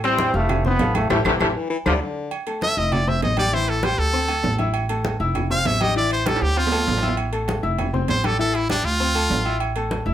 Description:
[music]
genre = latin, salsa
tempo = 198 BPM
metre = 4/4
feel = straight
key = A minor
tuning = A4 = 440 Hz
[part]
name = bright trombone section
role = melody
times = 0.0-1.9 s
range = C3 to C4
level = -21 LUFS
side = left 1 dB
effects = none
[part]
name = bright upright piano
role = accompaniment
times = 0.0-10.1 s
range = E3 to F6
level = -26 LUFS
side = left 4 dB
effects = none
[part]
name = upright bass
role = bass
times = 0.0-10.1 s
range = F1 to D2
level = -24 LUFS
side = equal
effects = none
[part]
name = agogo bells and timbales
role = percussion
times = 0.0-10.1 s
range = none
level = -29 LUFS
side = right 8 dB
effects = none
[part]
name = congas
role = percussion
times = 0.0-10.1 s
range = none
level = -28 LUFS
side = equal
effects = none
[part]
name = claves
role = percussion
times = 0.5-1.9 s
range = none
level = -31 LUFS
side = equal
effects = none
[part]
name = warm baritone saxophone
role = second line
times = 1.3-2.3 s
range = C3 to G3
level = -27 LUFS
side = left 4 dB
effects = none
[part]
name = brilliant trumpet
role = melody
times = 2.6-9.6 s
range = D4 to F5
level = -22 LUFS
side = equal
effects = none
[sound]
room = moderate studio reverb, RT60 0.6 s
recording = none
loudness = -19 LUFS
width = side -11 dB against mid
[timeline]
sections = 0.0-2.3 A section; 2.3-10.1 B section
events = band accent 1.1-2.3; drum fill 1.9-2.3, 6.3-7.2; trumpet solo 2.3-10.1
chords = 0.0 Fmaj7; 1.1 Am7; 1.7 D7(no3); 2.3 A5; 2.9 Fmaj7; 3.5 A5; 4.1 Dsus2; 4.7 A5; 5.3 Fmaj7; 6.0 A5; 6.6 Dm9; 7.2 A5; 7.8 Fmaj7; 8.4 A5; 9.0 Dm9; 9.6 A5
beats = 0.19 0.49 0.80 | 1.10 1.40 1.71 2.01 | 2.31 2.62 2.92 3.22 | 3.53 3.83 4.13 4.44 | 4.74 5.05 5.35 5.65 | 5.96 6.26 6.57 6.87 | 7.17 7.48 7.78 8.09 | 8.39 8.70 9.00 9.30 | 9.61 9.91

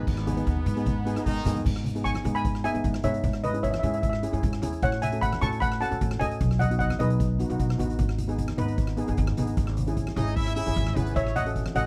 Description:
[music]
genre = calypso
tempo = 152 BPM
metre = 4/4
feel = straight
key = unclear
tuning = A4 = 438 Hz
[part]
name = brilliant horn section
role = second line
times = 0.0-1.6, 10.2-11.5 s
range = D#3 to E5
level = -36 LUFS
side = equal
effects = none
[part]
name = steel pan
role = accompaniment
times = 0.0-11.9 s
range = B3 to B4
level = -34 LUFS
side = equal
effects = none
[part]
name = upright bass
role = bass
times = 0.0-11.9 s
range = G#1 to A2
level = -30 LUFS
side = equal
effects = none
[part]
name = street-band drum kit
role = drums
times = 0.1-11.8 s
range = crash cymbal, hi-hat, kick drum, rim click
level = -34 LUFS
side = equal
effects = none
[part]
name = congas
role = percussion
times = 0.3-11.8 s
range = none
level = -36 LUFS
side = equal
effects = none
[part]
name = steel pan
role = melody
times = 2.0-7.8, 11.2-11.9 s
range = B4 to C#6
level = -31 LUFS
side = equal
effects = none
[sound]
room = small room ambience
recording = dry, close 1970s-style studio recording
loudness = -26 LUFS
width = mono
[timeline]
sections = 0.1-1.7 A section; 1.7-11.9 B section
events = drum fill 7.4-8.0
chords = 0.1 G#m; 3.2 C#m/G#; 4.8 F#m/A; 6.4 B; 8.0 G#m; 9.6 C#m/G#; 11.2 F#m/A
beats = | 0.07 0.47 0.87 1.26 | 1.66 2.05 2.45 2.85 | 3.24 3.64 4.03 4.43 | 4.82 5.22 5.62 6.01 | 6.41 6.80 7.20 7.59 | 7.99 8.38 8.78 9.18 | 9.57 9.97 10.36 10.76 | 11.16 11.55

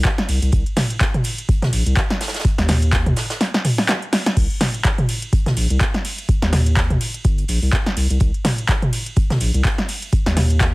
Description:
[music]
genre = acid house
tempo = 125 BPM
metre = 4/4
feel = swing 57% on 16ths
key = C minor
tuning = A4 = 442 Hz
[part]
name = round analog bass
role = bass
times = 0.0-10.7 s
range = G1 to Eb2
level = -18 LUFS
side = equal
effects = sidechain pumping
[part]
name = electro analog drum machine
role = drums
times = 0.0-10.7 s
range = crash cymbal, handclaps, hi-hat, ride cymbal, snare drum, toms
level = -20 LUFS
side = equal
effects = overdrive
[part]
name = electronic kick drum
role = drums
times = 0.0-10.7 s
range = none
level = -19 LUFS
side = equal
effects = overdrive
[part]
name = natural country drum kit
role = drums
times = 0.0-10.7 s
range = hi-hat, snare drum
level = -33 LUFS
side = right 1 dB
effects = sidechain pumping on hats, high-pass filter on hats, high-pass filter on snare, high-pass filter on room
[sound]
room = light reverb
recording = heavily compressed radio sound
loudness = -16 LUFS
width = side -23 dB against mid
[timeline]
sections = 0.0-10.7 A section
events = drum fill 3.4-4.4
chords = none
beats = 0.05 | 0.53 1.01 1.49 1.97 | 2.45 2.93 3.41 3.89 | 4.37 4.85 5.33 5.81 | 6.29 6.77 7.25 7.73 | 8.21 8.69 9.17 9.65 | 10.13 10.61

